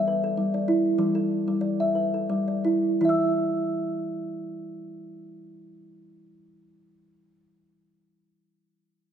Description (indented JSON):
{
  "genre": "world meditative, meditative tuned percussion",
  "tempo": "80-103 BPM",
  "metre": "3/4",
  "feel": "swing 54% on 16ths",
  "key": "E minor pentatonic",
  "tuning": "A4 = 441 Hz",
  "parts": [
    { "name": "kalimba", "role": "solo", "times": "0.0-8.1 s", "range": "E3 to E6", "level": "-23 LUFS", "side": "equal", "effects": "none" }
  ],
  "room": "wet echo chamber reverb, RT60 2.5 s",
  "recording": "dark, warm production",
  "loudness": "-23 LUFS",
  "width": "side -8 dB against mid",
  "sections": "0.0-3.0 A section; 3.0-7.5 B section",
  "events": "slowing down 0.0-3.0",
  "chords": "0.0 Em7; 3.0 N.C."
}